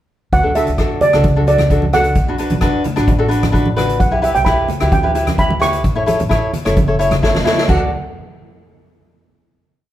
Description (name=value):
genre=calypso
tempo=130 BPM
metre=4/4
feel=straight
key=D major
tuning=A4 = 440 Hz
part: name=steel pan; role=melody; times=0.3-7.9 s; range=D5 to C#6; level=-17 LUFS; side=right 3 dB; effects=plate reverb
part: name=upright bass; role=bass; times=0.3-7.9 s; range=F#1 to D2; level=-19 LUFS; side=equal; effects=none
part: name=street-band drum kit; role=drums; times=0.3-7.8 s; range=crash cymbal, hi-hat, kick drum, rim click, snare drum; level=-19 LUFS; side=equal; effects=none
part: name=cavaquinho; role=accompaniment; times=0.4-7.9 s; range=D4 to D5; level=-18 LUFS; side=left 1 dB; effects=none
part: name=congas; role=percussion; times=1.0-7.9 s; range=none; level=-22 LUFS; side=right 1 dB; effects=none
room=wet small room reverb, RT60 0.5 s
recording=heard from further back in the room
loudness=-12 LUFS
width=side -13 dB against mid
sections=0.3-7.7 verse; 7.7-9.5 final chord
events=drum fill 7.2-7.7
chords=0.3 D; 2.2 Bm; 4.0 Em7/B; 5.8 A; 7.7 D